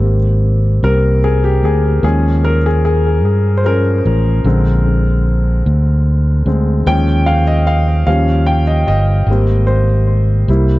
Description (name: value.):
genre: slow gospel.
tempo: 50 BPM (dotted quarters).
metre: 6/8.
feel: straight.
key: Ab major.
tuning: A4 = 439 Hz.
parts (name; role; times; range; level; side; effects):
warm concert grand piano; accompaniment; 0.0-10.8 s; D3 to G5; -16 LUFS; left 1 dB; analog delay.
fingered electric bass; bass; 0.0-10.8 s; G1 to G2; -12 LUFS; equal; none.
room: small room ambience.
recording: echo-heavy mix, nothing above 7.8 kHz.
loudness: -11 LUFS.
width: side -18 dB against mid.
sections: 0.0-10.8 A section.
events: grand piano solo 0.0-10.8.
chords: 0.0 Abmaj7; 2.0 Eb7sus4; 4.5 Bb7; 6.9 Eb7sus4; 8.1 Eb7; 9.3 Abmaj7.